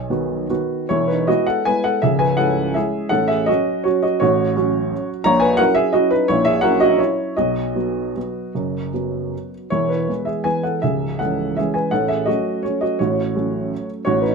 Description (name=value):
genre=classical, piano waltz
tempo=144-185 BPM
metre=3/4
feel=rubato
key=unclear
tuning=A4 = 440 Hz
part: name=warm upright piano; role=solo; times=0.0-14.3 s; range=C#1 to A#5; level=-17 LUFS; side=right 1 dB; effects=none
room=light reverb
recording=minimal, uncompressed stereo recording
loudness=-17 LUFS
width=side -4 dB against mid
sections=0.9-14.3 A section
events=none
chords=0.0 B; 0.9 E; 2.0 C#m; 3.1 F#m/A; 5.3 F#7/A#; 7.4 B; 9.7 E; 10.8 C#m; 11.9 F#m/A